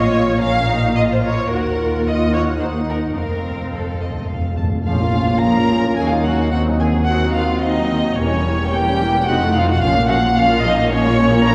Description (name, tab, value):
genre	quick classical-period movement for symphony orchestra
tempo	109 BPM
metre	3/4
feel	straight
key	Bb minor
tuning	A4 = 440 Hz
part	muted chamber violin section	melody	0.0-11.5 s	C#5 to Db6	-24 LUFS	equal	none
part	muted chamber violin section	second line	0.0-11.5 s	C#4 to F5	-26 LUFS	equal	none
part	muted chamber viola section	accompaniment	0.0-11.5 s	Eb3 to Gb4	-26 LUFS	equal	none
part	muted chamber cello section	bass	0.0-11.5 s	Eb2 to Bb2	-23 LUFS	equal	none
part	muted chamber double bass section	bass	0.0-11.5 s	E1 to Eb2	-26 LUFS	equal	none
part	timpani	percussion	3.2-5.7 s	F2 to Bb2	-26 LUFS	equal	none
part	mellow French horn section	sustained chords	4.9-11.5 s	A3 to G4	-26 LUFS	equal	none
room	wet concert hall reverb, RT60 2.4 s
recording	heard from further back in the room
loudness	-17 LUFS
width	mono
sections	0.0-4.9 A section; 4.9-11.5 B section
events	timpani fill 3.2-4.9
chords	0.0 Bbm; 1.5 Ebm; 3.2 F; 4.9 Bbm; 6.0 Ebm7; 6.5 Cdim/Eb; 8.2 Edim7; 9.3 F7; 9.8 Bbm